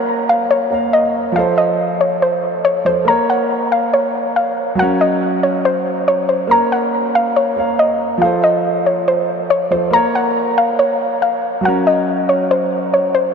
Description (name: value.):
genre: hip hop.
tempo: 140 BPM.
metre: 4/4.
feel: half-time.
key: Bb harmonic minor.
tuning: A4 = 440 Hz.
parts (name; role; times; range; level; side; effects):
soft round pluck; melody; 0.0-13.3 s; C5 to Bb5; -14 LUFS; left 1 dB; chorus, low-pass filter, diffuse ambient delay.
warm grand piano; accompaniment; 0.0-13.3 s; F3 to F5; -19 LUFS; right 2 dB; low-pass filter.
room: wet huge ambient reverb, RT60 8.3 s.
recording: dreamy mix soaked in reverb.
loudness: -13 LUFS.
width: side -6 dB against mid.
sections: 0.0-13.3 A section.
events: none.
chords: 0.0 Bbm; 1.4 F; 3.1 Bbm; 4.8 Gb; 6.5 Bbm; 8.2 F; 9.9 Bbm; 11.6 Gb.